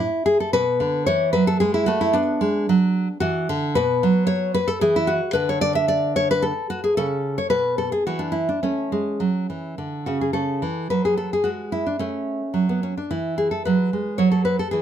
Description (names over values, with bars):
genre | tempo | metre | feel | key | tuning
classical, baroque-style dance for nylon-string guitar | 111 BPM | 3/4 | rubato | A major | A4 = 438 Hz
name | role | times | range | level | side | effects
nylon-string guitar | solo | 0.0-14.8 s | B2 to E5 | -19 LUFS | equal | slapback echo
room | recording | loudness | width
light reverb | close, detailed microphones | -19 LUFS | side -9 dB against mid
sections
0.0-10.4 A section; 10.4-14.8 A section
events
none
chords
0.0 N.C.; 0.5 Bm; 3.8 B5; 5.4 N.C.; 8.6 A; 10.4 A/C#; 12.0 A; 13.6 B5/F#